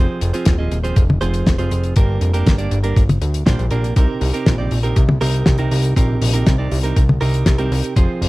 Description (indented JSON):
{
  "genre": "italo disco",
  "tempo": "120 BPM",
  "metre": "4/4",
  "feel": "straight",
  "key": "C minor",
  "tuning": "A4 = 440 Hz",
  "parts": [
    { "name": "direct-recorded clean electric guitar", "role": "stabs", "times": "0.0-8.3 s", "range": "G2 to Eb5", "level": "-23 LUFS", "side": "right 3 dB", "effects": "tape echo" },
    { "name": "fat analog bass", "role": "bass", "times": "0.0-8.3 s", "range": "Eb1 to D2", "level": "-18 LUFS", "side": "equal", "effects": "none" },
    { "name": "damped 70s drum kit", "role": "drums", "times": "0.2-8.3 s", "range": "hi-hat, snare drum, toms", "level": "-19 LUFS", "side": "left 1 dB", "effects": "studio reverb" },
    { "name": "electronic kick drum", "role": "drums", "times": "0.5-8.1 s", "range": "none", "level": "-15 LUFS", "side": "equal", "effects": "studio reverb" }
  ],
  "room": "little or no reverb",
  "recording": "dry, close 1970s-style studio recording",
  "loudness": "-14 LUFS",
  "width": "side -20 dB against mid",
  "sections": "0.0-8.3 A section",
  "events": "none",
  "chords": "0.0 Fm; 2.0 Gm; 4.0 Cm7"
}